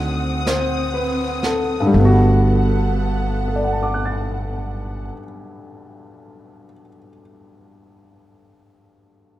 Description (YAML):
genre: jazz ballad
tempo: 39 BPM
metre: 4/4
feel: swing 68% on 8ths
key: G major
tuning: A4 = 443 Hz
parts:
  - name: warm baby grand piano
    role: accompaniment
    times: 0.0-9.4 s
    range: G2 to A6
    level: -21 LUFS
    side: left 1 dB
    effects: none
  - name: warm studio string section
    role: sustained chords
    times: 0.0-5.1 s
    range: B3 to Eb6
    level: -26 LUFS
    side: equal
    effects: none
  - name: upright bass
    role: bass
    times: 0.0-5.1 s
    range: G1 to D2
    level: -20 LUFS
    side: right 1 dB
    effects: none
  - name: jazz brush drum kit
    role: drums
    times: 0.5-2.7 s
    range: brushed snare drum, hi-hat, snare drum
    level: -30 LUFS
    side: right 2 dB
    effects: none
room: light reverb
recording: dark, warm production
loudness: -16 LUFS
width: side -14 dB against mid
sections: 0.0-1.9 A section; 1.9-8.1 B section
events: slowing down 0.0-1.9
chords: 0.0 D7b9; 1.9 Gmaj9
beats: 0.46 | 1.93 3.48 5.02 6.57